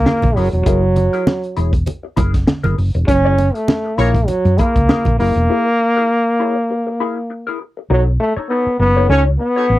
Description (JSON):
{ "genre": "funk", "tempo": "100 BPM", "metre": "4/4", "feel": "swing 56% on 16ths", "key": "F# mixolydian", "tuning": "A4 = 440 Hz", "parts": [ { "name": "clear trombone", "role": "melody", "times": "0.0-9.8 s", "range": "F#3 to C#4", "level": "-16 LUFS", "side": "equal", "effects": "none" }, { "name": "hollow-body short-scale fingered electric bass", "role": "bass", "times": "0.0-9.8 s", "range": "E1 to F#2", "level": "-16 LUFS", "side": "equal", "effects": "none" }, { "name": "mellow electric guitar", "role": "accompaniment", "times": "0.1-9.7 s", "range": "D#4 to C#5", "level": "-24 LUFS", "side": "left 7 dB", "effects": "wah, analog chorus" }, { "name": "crunchy breakbeat drum kit", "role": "drums", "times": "0.1-5.5 s", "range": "hi-hat, kick drum, snare drum", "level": "-17 LUFS", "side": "equal", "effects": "vintage 12-bit sampler grit" }, { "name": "congas", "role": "percussion", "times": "0.1-5.2 s", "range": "none", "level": "-23 LUFS", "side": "right 3 dB", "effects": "none" }, { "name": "clear horn section", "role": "second line", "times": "4.0-4.1, 9.1-9.7 s", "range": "F#4 to C#5", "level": "-22 LUFS", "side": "right 1 dB", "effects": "none" } ], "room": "little or no reverb", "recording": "dry, close 1970s-style studio recording", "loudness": "-13 LUFS", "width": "side -16 dB against mid", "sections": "0.0-7.9 A section; 7.9-9.8 B section", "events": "break 5.5-7.9", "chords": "0.0 F#9; 7.9 B9", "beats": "0.06 | 0.67 1.27 1.87 2.48 | 3.08 3.68 4.28 4.89 | 5.49 6.09 6.69 7.30 | 7.90 8.50 9.10 9.70" }